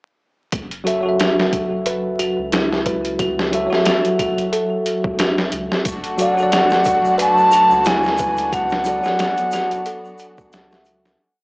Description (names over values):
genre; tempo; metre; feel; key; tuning
trip hop; 90 BPM; 4/4; swing 56% on 16ths; F# minor; A4 = 441 Hz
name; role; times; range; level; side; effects
soft dub sub bass; bass; 0.5-11.2 s; F#1 to C#2; -36 LUFS; equal; tube saturation
trip hop sampler-style drum kit; drums; 0.5-11.2 s; hi-hat, kick drum, snare drum; -21 LUFS; equal; overdrive
bell-like tine electric piano; accompaniment; 0.8-11.2 s; F#3 to E5; -21 LUFS; equal; fast stereo tremolo, harmonic tremolo, tape echo
music box; arpeggios; 1.2-10.7 s; E4 to F#5; -25 LUFS; equal; analog delay
clear symphonic string section; sustained chords; 5.8-11.2 s; F#3 to F#4; -27 LUFS; equal; none
egg shaker; percussion; 5.9-11.2 s; none; -40 LUFS; equal; none
reedy baroque flute; melody; 6.2-10.5 s; F#5 to A5; -16 LUFS; equal; tape echo
room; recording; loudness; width
light reverb, small room ambience; dry, gritty hardware recording, transformer saturation, vinyl crackle, small speaker sound; -15 LUFS; side -34 dB against mid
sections
0.5-11.2 groove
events
fade-out 7.6-11.2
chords
0.5 F#m7; 5.9 D/F#